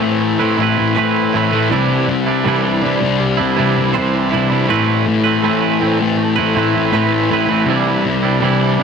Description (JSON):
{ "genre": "rock", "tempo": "80 BPM", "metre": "4/4", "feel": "straight", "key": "A minor", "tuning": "A4 = 440 Hz", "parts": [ { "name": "direct-recorded clean electric guitar", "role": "arpeggios", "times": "0.0-8.8 s", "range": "G3 to C5", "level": "-23 LUFS", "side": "right 9 dB", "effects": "ensemble chorus, analog delay" }, { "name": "thick fuzz guitar", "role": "riff", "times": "0.0-8.8 s", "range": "A2 to C4", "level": "-16 LUFS", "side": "left 6 dB", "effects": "distortion, wide subtle chorus" }, { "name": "twangy electric guitar", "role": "riff", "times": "0.0-8.8 s", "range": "A2 to B4", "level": "-17 LUFS", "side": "right 10 dB", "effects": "reverse reverb" } ], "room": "moderate plate reverb, RT60 2.5 s", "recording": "none", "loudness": "-13 LUFS", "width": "side -6 dB against mid", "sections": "0.0-8.8 A section", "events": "none", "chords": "0.0 Amadd9; 1.7 Cadd9; 4.7 Amadd9; 7.7 Cadd9" }